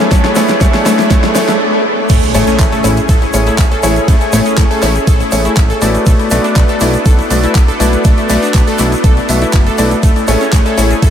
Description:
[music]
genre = progressive house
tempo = 121 BPM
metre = 4/4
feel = straight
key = A major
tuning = A4 = 441 Hz
[part]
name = lush unison pad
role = sustained chords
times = 0.0-11.1 s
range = A3 to G#4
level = -19 LUFS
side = equal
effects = chorus, sidechain pumping
[part]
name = analog pluck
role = arpeggios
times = 0.0-11.1 s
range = A3 to A4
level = -17 LUFS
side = left 2 dB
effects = chorus, sidechain pumping, ping-pong delay
[part]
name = warm grand piano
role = stabs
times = 0.0-10.9 s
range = A3 to E5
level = -15 LUFS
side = left 1 dB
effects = vintage 12-bit sampler grit, sidechain pumping, ping-pong delay
[part]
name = fat analog bass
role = bass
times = 0.0-11.1 s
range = F#1 to B1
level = -16 LUFS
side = equal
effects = sidechain pumping, high-pass filter
[part]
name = pop drum kit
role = drums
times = 0.0-11.1 s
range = crash cymbal, handclaps, hi-hat, ride cymbal, snare drum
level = -20 LUFS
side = equal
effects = overdrive, sidechain pumping on hats, sidechain pumping on cymbals
[part]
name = riser and impact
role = sound effects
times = 0.0-4.1 s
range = none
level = -22 LUFS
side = right 1 dB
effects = none
[part]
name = backwards swelling texture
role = texture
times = 0.0-1.6 s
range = none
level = barely audible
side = none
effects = none
[part]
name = electronic kick drum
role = drums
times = 0.1-11.1 s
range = none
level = -10 LUFS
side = equal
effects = overdrive
[part]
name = tube shaker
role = percussion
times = 0.1-11.1 s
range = none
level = -26 LUFS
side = right 1 dB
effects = none
[sound]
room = moderate huge ambient reverb, RT60 9.6 s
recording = dreamy mix soaked in reverb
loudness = -9 LUFS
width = side -9 dB against mid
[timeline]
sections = 0.0-2.1 A section; 2.1-11.1 B section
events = build-up 0.0-2.1; drum fill 0.0-1.6; break 1.6-2.1; drop 2.1-11.1; impact 2.1-4.1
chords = 0.0 Bm7; 2.1 Amaj7; 6.1 Bm7; 10.0 Amaj7

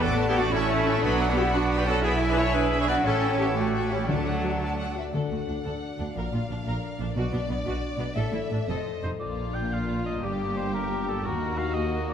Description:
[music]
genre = cinematic, heroic adventure film score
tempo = 119 BPM (dotted quarters)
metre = 6/8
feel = straight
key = D major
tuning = A4 = 440 Hz
[part]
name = warm symphonic violin section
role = melody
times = 0.0-12.1 s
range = F4 to D6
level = -37 LUFS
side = left 4 dB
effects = none
[part]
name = bright clarinet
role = second line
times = 0.0-5.0, 9.7-12.1 s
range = F4 to E5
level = -35 LUFS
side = left 1 dB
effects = none
[part]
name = hollow concert flute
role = second line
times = 0.0-5.0 s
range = E5 to G#5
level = -36 LUFS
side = left 2 dB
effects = none
[part]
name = warm cor anglais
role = second line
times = 0.0-4.9, 9.0-12.1 s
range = A3 to G5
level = -34 LUFS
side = right 2 dB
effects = none
[part]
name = warm symphonic violin section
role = second line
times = 0.0-12.1 s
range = D4 to B5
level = -38 LUFS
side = left 2 dB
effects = none
[part]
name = clear chamber viola section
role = accompaniment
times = 0.0-12.1 s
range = Bb3 to E5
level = -32 LUFS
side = right 1 dB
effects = none
[part]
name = concert harp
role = arpeggios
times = 0.0-12.1 s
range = F2 to D6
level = -34 LUFS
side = left 7 dB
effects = none
[part]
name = warm trumpet section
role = stabs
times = 0.0-5.0 s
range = F#3 to G#4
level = -30 LUFS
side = equal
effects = none
[part]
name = clear studio double bass section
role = bass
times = 0.0-12.1 s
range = F1 to Eb2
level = -31 LUFS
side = right 2 dB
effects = none
[part]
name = warm symphonic cello section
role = bass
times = 0.0-12.1 s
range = D2 to E4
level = -31 LUFS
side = right 2 dB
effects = none
[part]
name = warm French horn section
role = sustained chords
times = 0.4-5.0, 9.2-12.1 s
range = Bb3 to G4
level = -35 LUFS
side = left 4 dB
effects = none
[part]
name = timpani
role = percussion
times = 4.1-5.6 s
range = D3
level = -32 LUFS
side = left 2 dB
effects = none
[sound]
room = wet scoring stage reverb, RT60 2.0 s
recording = none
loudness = -24 LUFS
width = side -8 dB against mid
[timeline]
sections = 0.0-5.1 A section; 5.1-9.2 B section; 9.2-12.1 C section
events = none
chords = 0.0 D/A; 0.5 A; 1.0 Bm; 2.0 E/B; 3.0 A7; 4.1 D; 6.2 Bb; 7.2 Bm; 8.2 Asus4; 8.7 F7; 9.2 Bb; 10.2 Gm; 11.2 Ebm

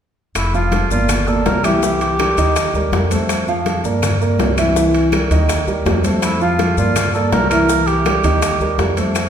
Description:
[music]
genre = latin, salsa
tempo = 164 BPM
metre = 4/4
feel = straight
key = unclear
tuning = A4 = 440 Hz
[part]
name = mellow cor anglais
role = melody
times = 0.4-3.1, 6.2-9.0 s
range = E4 to Bb4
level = -20 LUFS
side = right 1 dB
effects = none
[part]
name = upright bass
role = bass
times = 0.4-9.3 s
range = F1 to G2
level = -20 LUFS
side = left 1 dB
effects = none
[part]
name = bongos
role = percussion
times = 0.4-9.3 s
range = none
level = -25 LUFS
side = left 6 dB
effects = none
[part]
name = claves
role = percussion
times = 0.4-9.3 s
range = none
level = -32 LUFS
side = left 5 dB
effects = none
[part]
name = congas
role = percussion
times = 0.4-9.3 s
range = none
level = -24 LUFS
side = left 3 dB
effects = none
[part]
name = maracas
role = percussion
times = 0.4-9.3 s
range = none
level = -31 LUFS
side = left 7 dB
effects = none
[part]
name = timbales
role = percussion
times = 0.4-9.3 s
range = none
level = -25 LUFS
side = right 3 dB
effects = none
[part]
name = dark concert grand piano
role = accompaniment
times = 0.5-9.3 s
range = Eb3 to F5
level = -18 LUFS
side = right 2 dB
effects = none
[sound]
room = wet recital hall reverb, RT60 1.5 s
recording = recorded in a church or concert hall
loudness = -14 LUFS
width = side -8 dB against mid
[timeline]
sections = 0.4-9.3 A section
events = none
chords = 0.4 Bb6/F; 1.1 Gm; 1.8 C7; 2.6 Eb; 3.3 F; 4.0 Gm; 4.8 C7; 5.5 Eb; 6.2 F; 7.0 Gm; 7.7 C7; 8.4 Eb

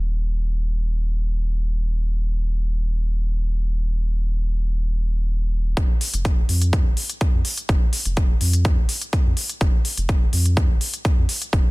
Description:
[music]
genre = progressive house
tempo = 125 BPM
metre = 4/4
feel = straight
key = unclear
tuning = A4 = 442 Hz
[part]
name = round analog bass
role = bass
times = 0.0-11.6 s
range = Eb1 to F2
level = -21 LUFS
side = equal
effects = sidechain pumping
[part]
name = electronic hi-hat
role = drums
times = 5.8-11.6 s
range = none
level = -26 LUFS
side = left 1 dB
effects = sidechain pumping on hats
[part]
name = electronic kick drum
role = drums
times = 5.8-11.6 s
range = none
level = -19 LUFS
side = equal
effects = none
[sound]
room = little or no reverb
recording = dense, heavily limited modern master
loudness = -19 LUFS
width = side -24 dB against mid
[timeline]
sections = 0.0-5.8 A section; 5.8-11.7 B section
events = build-up 5.8-11.7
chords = none

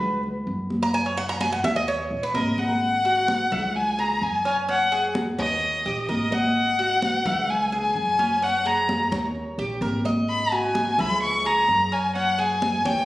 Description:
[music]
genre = latin, Cuban son and guajira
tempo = 128 BPM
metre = 4/4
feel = straight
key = unclear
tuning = A4 = 445 Hz
[part]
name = Cuban tres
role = arpeggios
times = 0.0-13.1 s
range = C#4 to A#5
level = -28 LUFS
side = right 1 dB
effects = none
[part]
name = upright bass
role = bass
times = 0.0-13.1 s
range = G#1 to F#2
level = -31 LUFS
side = equal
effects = none
[part]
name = congas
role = percussion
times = 0.0-13.1 s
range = none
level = -29 LUFS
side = equal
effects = none
[part]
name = warm violin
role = melody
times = 2.4-13.1 s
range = D#5 to C#6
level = -22 LUFS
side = left 1 dB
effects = none
[sound]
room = wet recital hall reverb, RT60 1.6 s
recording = recorded on a phone in the room, studio reverb, compression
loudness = -21 LUFS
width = side -16 dB against mid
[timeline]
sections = 0.0-2.8 A section; 2.8-13.1 B section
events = Cuban tres solo 0.0-2.8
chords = 0.0 C#7sus4; 0.9 D#madd11; 1.9 D#5; 2.8 C#madd11/G#; 3.8 C#m; 4.7 F#sus2; 5.6 D#7; 6.6 G#5; 7.5 C#m; 8.4 F#add9; 9.4 D#7; 10.3 G#5; 11.2 C#m; 12.2 F#sus2

